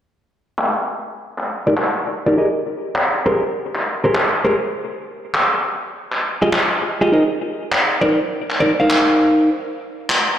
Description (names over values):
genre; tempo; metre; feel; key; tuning
glitch hop; 101 BPM; 4/4; swing 64% on 16ths; C minor; A4 = 440 Hz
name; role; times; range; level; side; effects
handclaps; drums; 0.6-10.2 s; none; -19 LUFS; equal; low-pass filter on snare, low-pass filter on room
clean electric guitar; stabs; 1.7-9.5 s; Eb4 to F5; -17 LUFS; equal; low-pass filter, ping-pong delay
room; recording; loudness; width
wet lush hall reverb, RT60 2.7 s; played on a big sound system in a bare room, stone room reverb; -16 LUFS; side -10 dB against mid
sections
0.0-10.4 A section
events
filter sweep on drum 0.0-10.4; filter sweep on clean electric guitar 0.0-10.4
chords
0.0 Ebmaj7; 2.4 Abmaj9; 4.7 Fm9; 7.1 Cm7; 9.5 N.C.